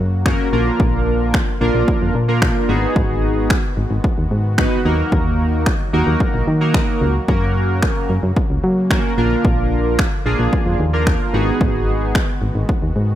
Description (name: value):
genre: dance-pop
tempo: 111 BPM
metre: 4/4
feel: straight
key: unclear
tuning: A4 = 441 Hz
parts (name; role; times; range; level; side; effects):
- soft supersaw; sustained chords; 0.0-13.2 s; C#3 to F#4; -30 LUFS; equal; sidechain pumping
- solid FM bass; bass; 0.0-13.2 s; G#1 to F#3; -18 LUFS; equal; sidechain pumping
- chorused polysynth; accompaniment; 0.3-12.2 s; A#3 to B4; -20 LUFS; right 1 dB; sidechain pumping
- house drum kit; drums; 0.3-12.8 s; finger snaps, kick drum; -18 LUFS; equal; overdrive
room: digital ambience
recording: rough home demo mix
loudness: -15 LUFS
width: side -12 dB against mid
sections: 0.0-13.2 A section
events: none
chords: 0.0 F#; 0.5 A#; 2.7 G#m7; 4.9 D#m; 7.3 F#; 9.2 A#; 11.3 G#m7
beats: 0.26 | 0.80 1.34 1.88 2.42 | 2.96 3.50 4.04 4.58 | 5.12 5.66 6.20 6.74 | 7.29 7.83 8.37 8.91 | 9.45 9.99 10.53 11.07 | 11.61 12.15 12.69